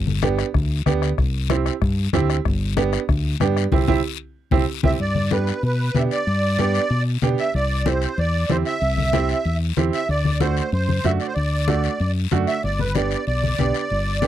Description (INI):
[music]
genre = latin, cumbia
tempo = 188 BPM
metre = 4/4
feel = straight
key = G major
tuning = A4 = 440 Hz
[part]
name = fingered electric bass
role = bass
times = 0.0-14.3 s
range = G1 to B2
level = -22 LUFS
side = left 1 dB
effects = none
[part]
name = congas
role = percussion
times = 0.1-14.3 s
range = none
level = -25 LUFS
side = left 6 dB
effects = none
[part]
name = clear upright piano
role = accompaniment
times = 0.2-14.3 s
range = A3 to G4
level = -24 LUFS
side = right 9 dB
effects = none
[part]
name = bombo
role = percussion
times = 0.2-4.9 s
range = none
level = -24 LUFS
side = left 2 dB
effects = none
[part]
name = guiro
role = percussion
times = 0.2-14.3 s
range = none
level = -33 LUFS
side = left 21 dB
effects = none
[part]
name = musette accordion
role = melody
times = 4.8-14.3 s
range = B4 to E5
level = -24 LUFS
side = right 2 dB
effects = slapback echo
[sound]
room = little or no reverb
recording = dry, close 1970s-style studio recording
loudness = -18 LUFS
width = side -12 dB against mid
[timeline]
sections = 0.0-5.0 A section; 5.0-14.3 B section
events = band accent 3.7-5.0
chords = 0.0 G; 1.2 C; 2.5 G; 3.7 C; 5.0 G; 7.5 C; 10.1 D7; 12.6 G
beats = 0.23 0.55 0.86 | 1.18 1.50 1.82 2.13 | 2.45 2.77 3.09 3.40 | 3.72 4.04 4.36 4.68 | 5.00 5.31 5.63 5.95 | 6.27 6.59 6.91 7.22 | 7.54 7.86 8.18 8.50 | 8.82 9.13 9.45 9.77 | 10.09 10.41 10.73 11.04 | 11.36 11.68 12.00 12.32 | 12.64 12.95 13.27 13.59 | 13.91 14.23